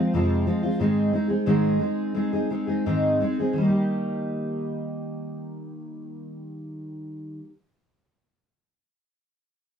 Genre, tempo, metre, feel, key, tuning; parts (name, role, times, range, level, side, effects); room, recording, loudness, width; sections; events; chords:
pop; 81-92 BPM; 4/4; straight; Eb major; A4 = 440 Hz
fingerpicked steel-string acoustic guitar; accompaniment; 0.0-7.5 s; F2 to Ab4; -23 LUFS; equal; double-tracked left and right
light reverb; dry, close 1970s-style studio recording; -22 LUFS; side -8 dB against mid
0.0-3.6 A section; 3.6-6.5 B section
slowing down 0.0-3.6
0.0 Fm; 0.8 Ab; 3.6 Eb